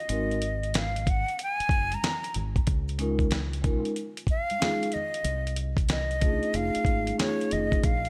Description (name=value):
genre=hip hop, jazz-hop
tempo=93 BPM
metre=4/4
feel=swing 65% on 16ths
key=unclear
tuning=A4 = 438 Hz
part: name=breathy silver concert flute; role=melody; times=0.0-8.1 s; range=C#5 to Bb5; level=-32 LUFS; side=equal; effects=none
part: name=vibraphone with soft mallets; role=accompaniment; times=0.1-7.8 s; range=Ab3 to Bb4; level=-33 LUFS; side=equal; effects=none
part: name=deep dub fingered electric bass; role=bass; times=0.1-8.1 s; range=F1 to Db2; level=-34 LUFS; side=equal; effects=none
part: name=dusty soul sampler-style drum kit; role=drums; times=0.1-8.1 s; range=hi-hat, kick drum, snare drum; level=-30 LUFS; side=equal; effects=none
part: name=maracas and congas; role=percussion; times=0.1-8.1 s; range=none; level=-46 LUFS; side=equal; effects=none
room=light reverb, small room reverb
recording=none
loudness=-27 LUFS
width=mono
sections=0.0-7.8 A section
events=none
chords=0.1 Ab7(no3); 2.7 Db69; 5.3 Cm6; 6.5 F7alt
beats=| 0.09 0.74 1.38 2.03 | 2.67 3.32 3.96 4.61 | 5.25 5.90 6.54 7.19 | 7.83